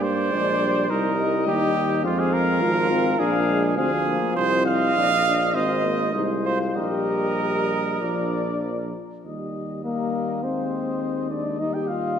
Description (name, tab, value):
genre	classical, brass quintet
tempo	95-106 BPM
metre	4/4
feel	rubato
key	Eb major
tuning	A4 = 440 Hz
part	warm trumpet	melody	0.0-12.2 s	C5 to F5	-30 LUFS	left 7 dB	none
part	mellow trumpet	second line	0.0-12.2 s	F4 to G5	-25 LUFS	right 4 dB	none
part	mellow trombone	accompaniment	0.0-12.2 s	F3 to C4	-30 LUFS	right 1 dB	none
part	warm tuba	bass	0.0-12.2 s	Ab1 to G2	-26 LUFS	right 2 dB	none
part	warm French horn	accompaniment	0.3-12.2 s	Bb3 to G4	-27 LUFS	left 6 dB	none
room	wet concert hall reverb, RT60 2.1 s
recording	none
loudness	-20 LUFS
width	side -8 dB against mid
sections	0.0-9.2 A section; 9.2-12.2 B section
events	none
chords	0.0 Gm; 0.9 Cm7; 2.0 Fm; 3.2 Bb7; 4.4 Cm; 5.5 Ab; 6.8 Eb/Bb; 8.0 Bb; 9.2 Eb; 10.4 Ab/Eb; 11.6 Eb